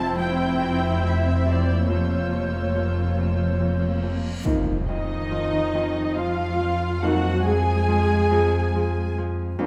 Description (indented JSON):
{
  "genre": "cinematic",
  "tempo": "70 BPM",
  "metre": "3/4",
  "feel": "straight",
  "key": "unclear",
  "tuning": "A4 = 440 Hz",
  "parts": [
    { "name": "muted symphonic violin section", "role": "melody", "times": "0.0-9.1 s", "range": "Db5 to A5", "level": "-34 LUFS", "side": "equal", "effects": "none" },
    { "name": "muted symphonic viola section", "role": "accompaniment", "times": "0.0-9.2 s", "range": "Bb3 to Ab4", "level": "-29 LUFS", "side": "equal", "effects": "none" },
    { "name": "Celtic harp", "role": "riff", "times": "0.0-9.7 s", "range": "F2 to F3", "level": "-34 LUFS", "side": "equal", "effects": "none" },
    { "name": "muted studio cello section", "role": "bass", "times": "0.0-9.2 s", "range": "F2 to Ab3", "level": "-30 LUFS", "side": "equal", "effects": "none" },
    { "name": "muted symphonic double bass section", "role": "bass", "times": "0.0-9.7 s", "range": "F1 to F2", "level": "-28 LUFS", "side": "equal", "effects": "none" },
    { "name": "muted symphonic violin section", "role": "texture", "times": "0.0-4.0 s", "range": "E6 to G6", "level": "-40 LUFS", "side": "equal", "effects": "none" },
    { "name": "reverse cymbal and impact", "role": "sound effects", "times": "4.2-7.0 s", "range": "none", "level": "-35 LUFS", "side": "equal", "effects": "none" },
    { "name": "mellow French horn section", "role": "sustained chords", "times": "4.4-9.7 s", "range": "Bb3 to Eb4", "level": "-30 LUFS", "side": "equal", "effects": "none" },
    { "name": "muted symphonic violin section", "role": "second line", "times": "4.9-9.2 s", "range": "Eb5 to Ab5", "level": "-33 LUFS", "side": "equal", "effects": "none" }
  ],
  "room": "moderate scoring stage reverb, RT60 1.9 s",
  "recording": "none",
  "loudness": "-23 LUFS",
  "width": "mono",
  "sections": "0.0-4.5 A section; 4.5-9.7 B section",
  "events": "reverse cymbal 4.2-4.5; impact 4.5-7.0",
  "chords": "0.0 C/F; 1.9 Bbm/F; 4.5 Ebm/F"
}